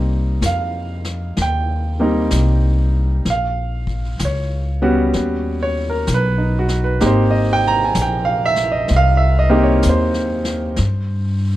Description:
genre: jazz ballad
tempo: 64 BPM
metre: 4/4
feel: swing 66% on 8ths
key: unclear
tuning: A4 = 440 Hz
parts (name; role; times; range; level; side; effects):
- warm baby grand piano; accompaniment; 0.0-11.6 s; G3 to Bb5; -18 LUFS; right 1 dB; none
- upright bass; bass; 0.0-11.6 s; Ab1 to G2; -18 LUFS; equal; none
- vintage brush drum kit; drums; 0.4-11.6 s; brushed snare drum, hi-hat, kick drum, snare drum; -29 LUFS; left 2 dB; none
room: little or no reverb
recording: close, detailed microphones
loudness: -15 LUFS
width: side -14 dB against mid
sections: 0.0-11.6 A section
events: none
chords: 0.0 Cm7; 3.3 Bbm; 5.1 Eb7alt; 7.0 Abmaj9; 10.8 Fsus2 (rootless)

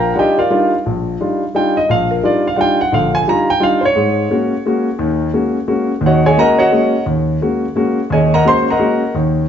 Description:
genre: jazz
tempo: 174 BPM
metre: 3/4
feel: swing 62% on 8ths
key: Eb major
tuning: A4 = 442 Hz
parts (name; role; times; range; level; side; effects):
- warm concert grand piano; solo; 0.0-9.4 s; Bb1 to C6; -12 LUFS; equal; none
room: wet large studio reverb, RT60 1.2 s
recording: nothing above 7.6 kHz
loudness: -12 LUFS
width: side -8 dB against mid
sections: 0.0-4.0 A section; 4.0-9.5 A section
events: none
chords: 0.0 Ebmaj9; 4.0 Ab9sus4

